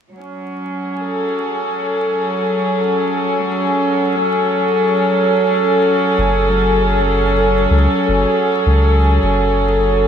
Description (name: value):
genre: ambient dub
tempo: 79 BPM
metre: 4/4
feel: straight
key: F# minor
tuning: A4 = 444 Hz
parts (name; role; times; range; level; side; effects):
- warm studio string section; sustained chords; 0.1-10.1 s; F#3 to A4; -14 LUFS; equal; none
- soft dub sub bass; bass; 6.2-10.1 s; F#1 to C#2; -16 LUFS; equal; none
room: wet huge ambient reverb, RT60 9.7 s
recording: dreamy mix soaked in reverb, vinyl crackle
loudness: -13 LUFS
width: side -8 dB against mid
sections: 0.1-6.2 A section; 6.2-10.1 B section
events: none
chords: 0.1 F#madd9